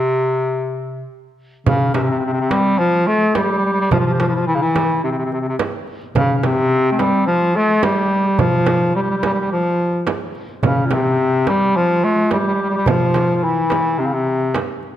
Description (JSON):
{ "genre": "Turkish makam ensemble", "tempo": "107 BPM", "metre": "4/4", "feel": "straight", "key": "C makam hicaz", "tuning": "A4 = 439 Hz", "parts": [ { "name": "bright bass clarinet", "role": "melody", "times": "0.0-14.6 s", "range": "Bb2 to A3-40c", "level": "-17 LUFS", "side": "equal", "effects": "none" }, { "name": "mellow clarinet", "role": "second line", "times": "1.7-14.5 s", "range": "C4 to A4-35c", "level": "-22 LUFS", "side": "left 2 dB", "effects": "none" }, { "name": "darbuka", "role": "percussion", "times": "1.7-14.9 s", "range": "none", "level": "-22 LUFS", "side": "right 1 dB", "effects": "none" }, { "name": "frame drum", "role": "percussion", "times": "1.7-14.7 s", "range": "none", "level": "-24 LUFS", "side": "right 5 dB", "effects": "none" } ], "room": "moderate concert hall reverb, RT60 1.9 s", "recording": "none", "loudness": "-15 LUFS", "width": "side -11 dB against mid", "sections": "0.0-1.7 A section; 1.7-15.0 B section", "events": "break 0.0-1.7", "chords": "none" }